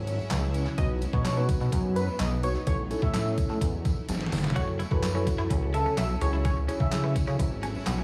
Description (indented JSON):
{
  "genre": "dance-pop",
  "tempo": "127 BPM",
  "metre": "4/4",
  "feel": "straight",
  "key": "C# minor",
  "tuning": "A4 = 441 Hz",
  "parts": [
    { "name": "shimmering ambient pad", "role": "sustained chords", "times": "0.0-8.0 s", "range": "F#3 to G#5", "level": "-42 LUFS", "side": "equal", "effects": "chorus, built-in reverb, phaser, sidechain pumping" },
    { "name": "chorused synth bass", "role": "bass", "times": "0.0-8.0 s", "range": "F#1 to C#3", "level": "-31 LUFS", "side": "equal", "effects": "sidechain pumping" },
    { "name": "detuned 8-bit digital drum machine", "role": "drums", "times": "0.1-8.0 s", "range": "handclaps, hi-hat, kick drum, snare drum", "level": "-32 LUFS", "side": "equal", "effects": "overdrive, tape echo" },
    { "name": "tambourine", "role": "percussion", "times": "0.1-8.0 s", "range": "none", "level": "-50 LUFS", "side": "equal", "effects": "none" },
    { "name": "octave-doubled lead", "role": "melody", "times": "0.8-7.1 s", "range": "A4 to E5", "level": "-37 LUFS", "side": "equal", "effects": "chorus, sidechain pumping, tape echo" },
    { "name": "tine electric piano", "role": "accompaniment", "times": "0.8-7.5 s", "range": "B3 to C#5", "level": "-37 LUFS", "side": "equal", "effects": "sidechain pumping, tape echo" },
    { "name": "twelve-string electric guitar", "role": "riff", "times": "4.6-8.0 s", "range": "B3 to F#4", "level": "-41 LUFS", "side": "equal", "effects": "lush chorus, tape echo" }
  ],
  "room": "light reverb",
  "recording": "echo-heavy mix, small room ambience",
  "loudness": "-27 LUFS",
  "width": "mono",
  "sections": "0.0-8.0 A section",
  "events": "drum fill 4.1-4.6",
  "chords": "0.0 C#m; 0.8 B; 2.7 A; 4.6 F#m7; 6.2 C#m"
}